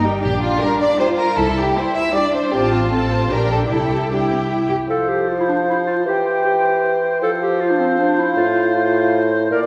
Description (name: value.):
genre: quick classical-period movement for symphony orchestra.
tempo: 156 BPM.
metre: 3/4.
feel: straight.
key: F major.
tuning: A4 = 441 Hz.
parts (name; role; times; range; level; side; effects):
dark studio violin section; melody; 0.0-4.7 s; G5 to A5; -32 LUFS; equal; none.
warm studio violin section; second line; 0.0-4.7 s; F4 to E5; -22 LUFS; equal; none.
rich studio viola section; accompaniment; 0.0-4.7 s; G3 to G4; -26 LUFS; equal; none.
warm studio cello section; bass; 0.0-4.8 s; C4 to G4; -26 LUFS; equal; none.
warm studio double bass section; bass; 0.0-4.7 s; G1 to C2; -26 LUFS; equal; none.
clear clarinet; second line; 4.9-9.6 s; C4 to Bb4; -22 LUFS; equal; none.
clear oboe; second line; 4.9-9.7 s; C5 to D5; -26 LUFS; equal; none.
hollow small flute group; second line; 4.9-9.7 s; F5 to G5; -25 LUFS; equal; none.
clear bassoon; accompaniment; 4.9-9.7 s; A2 to F3; -22 LUFS; equal; none.
room: wet scoring stage reverb, RT60 2.0 s.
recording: heard from further back in the room, vinyl crackle.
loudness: -18 LUFS.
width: mono.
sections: 0.0-4.9 A section; 4.9-9.7 B section.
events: none.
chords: 0.2 Gm/Bb; 1.4 C; 2.5 F/A; 3.3 Gm/Bb; 3.7 C; 4.9 F5; 6.1 C/E; 7.2 F5; 8.4 F/A.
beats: | 0.23 0.61 0.99 | 1.38 1.76 2.15 | 2.53 2.92 3.31 | 3.71 4.10 4.50 | 4.89 5.28 5.67 | 6.06 6.44 6.83 | 7.21 7.60 7.98 | 8.36 8.74 9.13 | 9.51.